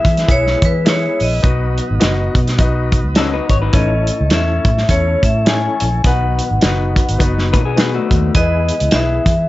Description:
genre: uptempo 1960s-style soul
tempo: 104 BPM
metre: 4/4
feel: swing 58% on 8ths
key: unclear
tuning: A4 = 440 Hz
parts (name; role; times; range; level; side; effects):
- vibraphone with hard mallets; melody; 0.0-9.5 s; B4 to G#5; -19 LUFS; left 1 dB; plate reverb
- clear concert grand piano; accompaniment; 0.0-9.3 s; A2 to E5; -22 LUFS; left 4 dB; plate reverb
- tonewheel organ; sustained chords; 0.0-9.5 s; D#3 to E4; -27 LUFS; right 1 dB; slow rotary speaker, plate reverb
- warm soul drum kit; drums; 0.0-9.4 s; hi-hat, kick drum, snare drum; -16 LUFS; equal; none
- vintage muted fingered electric bass; bass; 0.1-9.4 s; F#1 to E3; -18 LUFS; equal; none
- electric guitar through a small old amp; riff; 3.2-3.9, 7.5-8.3 s; A3 to C#5; -20 LUFS; left 7 dB; none
room: light reverb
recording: nothing above 7.8 kHz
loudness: -12 LUFS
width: side -17 dB against mid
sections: 0.0-9.5 A section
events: none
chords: 0.0 E; 1.4 B; 3.7 A; 6.0 B; 8.3 E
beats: 0.29 0.87 | 1.44 2.02 2.59 3.17 | 3.75 4.32 4.90 5.47 | 6.05 6.62 7.20 7.77 | 8.35 8.93

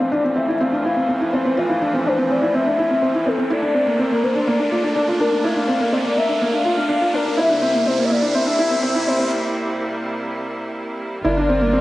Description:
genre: piano and strings electronica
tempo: 124 BPM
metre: 4/4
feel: straight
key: F major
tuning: A4 = 440 Hz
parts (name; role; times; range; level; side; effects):
- warm velvety synth lead; melody; 0.0-11.8 s; A4 to F5; -21 LUFS; left 2 dB; chorus, tape echo
- clear studio string section; sustained chords; 0.0-11.8 s; C3 to Bb4; -25 LUFS; right 1 dB; low-pass filter, cassette tape
- felt-muted upright piano; riff; 0.0-11.8 s; Bb3 to F4; -20 LUFS; right 1 dB; cassette tape, tape echo
- round analog bass; bass; 0.0-11.8 s; none; barely audible; none; none
- riser; sound effects; 0.0-9.3 s; none; -30 LUFS; right 1 dB; none
room: wet spring reverb, RT60 2.3 s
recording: home recording on cassette, high-pass filter, nothing above 10.5 kHz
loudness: -17 LUFS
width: side -16 dB against mid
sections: 0.0-11.3 A section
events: build-up 0.0-11.3; riser 0.0-9.3; filter sweep 0.0-11.3; break 9.3-11.3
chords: 0.0 Fmaj7/A; 3.5 Bbmaj7; 7.4 C7; 11.3 Gm7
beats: 0.12 0.60 1.09 | 1.57 2.06 2.54 3.02 | 3.51 3.99 4.48 4.96 | 5.44 5.93 6.41 6.90 | 7.38 7.86 8.35 8.83 | 9.31 9.80 10.28 10.77 | 11.25 11.73

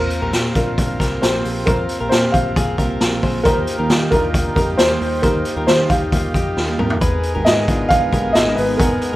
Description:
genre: jangly indie pop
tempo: 135 BPM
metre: 4/4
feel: straight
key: Eb major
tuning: A4 = 441 Hz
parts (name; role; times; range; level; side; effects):
- warm upright piano; melody; 0.0-9.2 s; Bb4 to F5; -19 LUFS; equal; none
- combo organ; accompaniment; 0.0-9.2 s; Cb4 to Bb4; -27 LUFS; right 1 dB; none
- picked steel-string acoustic guitar; accompaniment; 0.0-9.2 s; Ab2 to Bb4; -27 LUFS; right 4 dB; none
- direct-recorded clean electric guitar; arpeggios; 0.0-9.2 s; Bb3 to C5; -25 LUFS; left 3 dB; none
- picked electric bass; bass; 0.0-9.2 s; Ab1 to Eb3; -25 LUFS; equal; none
- raw garage drum kit; drums; 0.1-9.1 s; hi-hat, kick drum, snare drum, toms; -19 LUFS; equal; none
- hollow soft pad; sustained chords; 7.0-9.2 s; Ab3 to Cb4; -26 LUFS; equal; chorus
room: light reverb, studio reverb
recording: rough home demo mix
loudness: -15 LUFS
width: side -16 dB against mid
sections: 0.0-9.2 A section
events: drum fill 6.6-7.0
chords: 0.0 Bbsus2; 3.5 Ebadd9; 7.0 Abmadd9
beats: 0.33 0.78 1.22 | 1.67 2.12 2.56 3.01 | 3.45 3.90 4.34 4.79 | 5.23 5.68 6.12 6.57 | 7.02 7.46 7.91 8.35 | 8.80

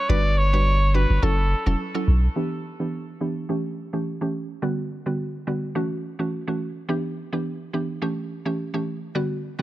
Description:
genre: afrobeats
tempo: 106 BPM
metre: 4/4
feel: swing 55% on 16ths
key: A mixolydian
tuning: A4 = 441 Hz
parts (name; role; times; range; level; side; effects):
- warm trumpet; melody; 0.0-1.8 s; A4 to D5; -26 LUFS; equal; tape echo
- mallet-like synth pluck; accompaniment; 0.1-9.6 s; D3 to B4; -26 LUFS; right 1 dB; chorus, low-pass filter
- punchy sub bass; bass; 0.1-2.3 s; E1 to B1; -19 LUFS; equal; none
room: small room ambience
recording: echo-heavy mix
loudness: -22 LUFS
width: side -15 dB against mid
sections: 0.0-2.4 A section; 2.4-9.6 B section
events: filter sweep on synth pluck 2.4-9.6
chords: 0.1 Gmaj7; 1.2 F#m7; 2.4 Em7; 3.5 A7; 4.6 Gmaj7; 5.8 F#m7; 6.9 Em7; 8.0 A7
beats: | 0.10 0.66 1.23 1.79 | 2.36 2.92 3.49 4.06 | 4.62 5.19 5.75 6.32 | 6.89 7.45 8.02 8.59 | 9.15

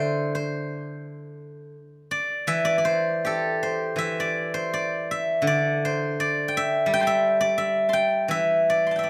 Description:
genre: chinese traditional, Chinese solo plucked strings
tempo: 83 BPM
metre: 2/4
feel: rubato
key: unclear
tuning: A4 = 439 Hz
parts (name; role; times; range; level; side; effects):
- steel-string zither; solo; 0.0-9.1 s; D3 to C6; -24 LUFS; equal; none
room: wet recital hall reverb, RT60 1.5 s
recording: none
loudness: -24 LUFS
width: mono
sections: 0.0-4.0 A section; 4.0-9.1 B section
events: none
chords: none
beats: 0.32 | 1.04 1.76 | 2.48 3.22 | 3.96 4.71 | 5.45 6.16 | 6.88 7.59 | 8.30 9.04

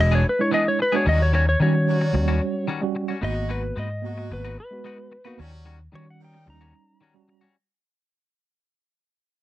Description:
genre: blues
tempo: 111 BPM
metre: 4/4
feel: straight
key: unclear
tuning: A4 = 440 Hz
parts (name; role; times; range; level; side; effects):
- clean lap steel guitar; melody; 0.0-7.5 s; B4 to A#5; -25 LUFS; left 1 dB; none
- tine electric piano; accompaniment; 0.0-7.5 s; G3 to F#4; -27 LUFS; right 5 dB; overdrive, fast stereo tremolo
- bright horn section; sustained chords; 0.0-7.5 s; D#3 to G4; -36 LUFS; equal; none
- clean electric guitar; stabs; 0.0-7.6 s; D#3 to B4; -31 LUFS; left 5 dB; none
- vintage muted fingered electric bass; bass; 0.0-6.7 s; E1 to D#3; -22 LUFS; left 1 dB; none
room: little or no reverb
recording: dry, close 1970s-style studio recording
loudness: -20 LUFS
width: side -14 dB against mid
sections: 0.0-7.6 A section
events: fade-out 0.0-7.6; electric slide guitar solo 0.0-7.6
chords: 0.0 E7; 1.1 D#7#9; 3.2 G#m7; 5.4 D#7#9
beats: 0.53 | 1.07 1.61 2.15 2.69 | 3.23 3.77 4.31 4.85 | 5.39 5.93 6.47 7.01

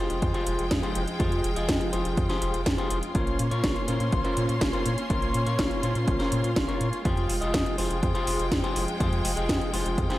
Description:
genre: italo disco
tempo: 123 BPM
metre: 4/4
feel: straight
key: F minor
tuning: A4 = 440 Hz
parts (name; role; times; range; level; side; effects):
- rich studio string section; sustained chords; 0.0-10.2 s; F3 to C6; -31 LUFS; equal; none
- clean electric guitar; stabs; 0.0-10.2 s; Db4 to Eb5; -30 LUFS; left 2 dB; spring reverb, digital delay
- round analog bass; bass; 0.0-10.1 s; F1 to Bb2; -30 LUFS; equal; none
- house drum kit; drums; 0.1-10.2 s; hi-hat, snare drum; -30 LUFS; equal; overdrive, gated reverb
- electronic kick drum; drums; 0.2-10.1 s; none; -30 LUFS; equal; overdrive
room: light reverb, digital ambience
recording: none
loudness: -24 LUFS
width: side -16 dB against mid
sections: 0.0-10.2 A section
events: none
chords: 0.0 Fmadd9; 3.1 Bbmadd9; 7.1 Fmadd9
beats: 0.22 0.71 | 1.20 1.69 2.17 2.66 | 3.15 3.64 4.12 4.61 | 5.10 5.59 6.08 6.56 | 7.05 7.54 8.03 8.52 | 9.00 9.49 9.98

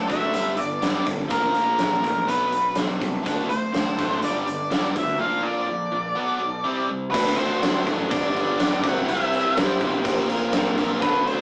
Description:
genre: classic rock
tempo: 124 BPM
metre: 4/4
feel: straight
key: unclear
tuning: A4 = 440 Hz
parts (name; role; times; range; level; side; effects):
- octave-fuzz lead guitar; melody; 0.0-11.4 s; A4 to F#5; -27 LUFS; equal; distortion
- picked twelve-string acoustic guitar; accompaniment; 0.0-11.4 s; G2 to Bb4; -38 LUFS; equal; none
- crunchy overdriven guitar; riff; 0.0-11.4 s; G2 to E4; -36 LUFS; equal; none
- tight distorted guitar; riff; 0.0-11.4 s; G2 to E4; -32 LUFS; equal; distortion
- fuzz picked electric bass; bass; 0.1-11.4 s; G1 to D2; -33 LUFS; equal; overdrive
- big rock drum kit; drums; 0.1-11.4 s; crash cymbal, hi-hat, kick drum, snare drum; -28 LUFS; equal; none
- dark smooth lead guitar; second line; 7.1-11.4 s; B3 to F#4; -36 LUFS; equal; none
- electric slide guitar; second line; 9.6-10.9 s; F4 to C5; -29 LUFS; equal; none
room: moderate small room reverb, RT60 0.5 s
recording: rough rehearsal-room recording, warm saturation, small speaker sound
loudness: -23 LUFS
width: mono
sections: 0.0-7.1 A section; 7.1-11.4 B section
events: none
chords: 0.3 Gadd9; 1.3 Bb; 2.3 Bm7; 3.3 D; 4.2 Gadd9; 5.2 Bb; 6.2 Bm7; 6.7 C; 7.1 D; 8.1 G; 8.8 C; 10.1 Bbsus2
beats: 0.35 0.83 | 1.32 1.81 2.29 2.78 | 3.27 3.75 4.24 4.72 | 5.21 5.69 6.18 6.66 | 7.15 7.63 8.11 8.60 | 9.08 9.57 10.05 10.54 | 11.02

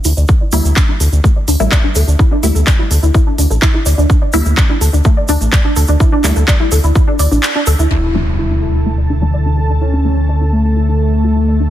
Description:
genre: melodic techno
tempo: 126 BPM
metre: 4/4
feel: straight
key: D minor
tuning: A4 = 440 Hz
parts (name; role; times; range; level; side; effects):
- filtered dub chord stab; stabs; 0.0-11.7 s; D3 to E4; -22 LUFS; left 2 dB; phaser, sidechain pumping, dub echo
- egg shaker; percussion; 0.0-7.9 s; none; -24 LUFS; right 4 dB; none
- warbly dusty pluck; arpeggios; 0.1-11.6 s; A3 to D5; -19 LUFS; equal; ensemble chorus, vintage 12-bit sampler grit, sidechain pumping, dub echo
- round analog bass; bass; 0.1-11.7 s; A1 to D2; -12 LUFS; equal; sidechain pumping
- house drum kit; drums; 0.1-7.8 s; handclaps, hi-hat; -19 LUFS; equal; sidechain pumping on hats, low-pass filter on hats, small room ambience, low-pass filter on snare
- electronic kick drum; drums; 0.3-7.1 s; none; -12 LUFS; equal; small room ambience
- wide unison lead; melody; 7.9-11.7 s; A3 to E4; -19 LUFS; left 1 dB; sidechain pumping, dub echo
- lush unison pad; sustained chords; 8.5-11.7 s; D3 to A5; -21 LUFS; equal; chorus, sidechain pumping
- impact; sound effects; 7.9-9.8 s; none; -20 LUFS; right 1 dB; none
room: light reverb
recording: dense, heavily limited modern master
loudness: -10 LUFS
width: side -12 dB against mid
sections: 0.0-7.9 A section; 7.9-11.7 B section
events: filter sweep on synth arpeggio sound 0.0-7.9, 7.9-11.7; filter sweep on synth stab 0.0-7.9; kick drops out 7.4-7.9; band accent 7.4; impact 7.9-9.8; filter sweep on analog synth lead 7.9-11.7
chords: 0.3 Edim; 7.9 Dm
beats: | 0.29 0.77 1.24 1.72 | 2.19 2.67 3.15 3.62 | 4.10 4.57 5.05 5.53 | 6.00 6.48 6.96 7.43 | 7.91 8.38 8.86 9.34 | 9.81 10.29 10.77 11.24

